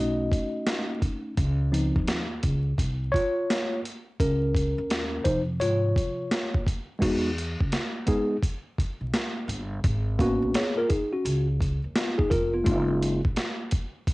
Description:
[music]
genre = hip hop, jazz-hop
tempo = 85 BPM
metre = 4/4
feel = swing 66% on 16ths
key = Db major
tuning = A4 = 440 Hz
[part]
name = mellow tine electric piano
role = accompaniment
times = 0.0-13.2 s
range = C3 to Eb5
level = -26 LUFS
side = equal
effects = medium stereo tremolo, cassette tape
[part]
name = upright bass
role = bass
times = 0.0-13.4 s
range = F1 to Ab2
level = -28 LUFS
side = equal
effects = none
[part]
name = boom bap sampler-style drum kit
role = drums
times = 0.3-14.1 s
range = crash cymbal, hi-hat, kick drum, snare drum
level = -27 LUFS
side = equal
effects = cassette tape
[sound]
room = light reverb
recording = home recording on cassette, vinyl crackle, nothing above 10.3 kHz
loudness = -24 LUFS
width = side -21 dB against mid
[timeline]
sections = 0.0-7.0 A section; 7.0-14.1 B section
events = tine electric piano solo 0.0-7.0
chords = 0.0 Cb9; 1.4 Dbmaj9; 7.0 Emaj9; 9.8 Abm11; 11.3 Dbadd9; 12.7 Gbmaj13

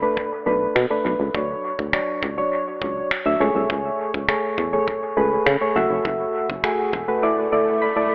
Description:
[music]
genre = dance-pop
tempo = 102 BPM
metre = 4/4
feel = straight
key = A major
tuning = A4 = 441 Hz
[part]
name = soft electric-piano-like synth keys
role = accompaniment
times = 0.0-8.1 s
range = F#3 to B5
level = -23 LUFS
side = equal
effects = chorus, sidechain pumping, dub echo
[part]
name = solid FM bass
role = bass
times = 0.0-7.1 s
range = E1 to C#3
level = -27 LUFS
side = equal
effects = sidechain pumping
[part]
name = natural country drum kit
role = drums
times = 0.2-7.1 s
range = finger snaps, kick drum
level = -30 LUFS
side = equal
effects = dub echo
[part]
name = swell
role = sound effects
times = 7.0-8.1 s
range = none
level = -30 LUFS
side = equal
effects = none
[sound]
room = moderate plate reverb, RT60 1.7 s, small room ambience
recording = echo-heavy mix, telephone sound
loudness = -22 LUFS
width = mono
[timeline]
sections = 0.0-8.1 A section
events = swell 7.0-8.1; synth keys fill 7.2-8.1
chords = 0.0 Bm7; 1.3 Dmaj7; 3.4 Amaj7; 5.8 F#m7; 7.2 E7sus4

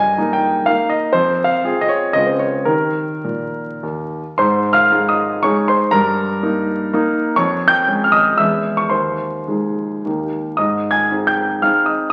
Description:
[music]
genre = classical, romantic triple-time dance for piano with dotted rhythms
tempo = 100-134 BPM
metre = 3/4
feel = rubato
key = Ab major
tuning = A4 = 440 Hz
[part]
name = warm grand piano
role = solo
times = 0.0-12.1 s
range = Db2 to Ab6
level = -17 LUFS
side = equal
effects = none
[sound]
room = wet large studio reverb, RT60 1.4 s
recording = very old 78 rpm record, vinyl crackle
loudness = -17 LUFS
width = mono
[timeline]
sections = 0.0-4.4 A section; 4.4-12.1 B section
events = none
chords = 0.0 Eb/G; 1.1 Fm; 2.2 Dbmaj7; 2.7 Eb; 4.4 Ab; 5.9 Eb/G; 7.4 Db/F; 8.4 Dbm/Fb; 8.9 Ab/Eb; 10.1 Eb; 10.6 Ab

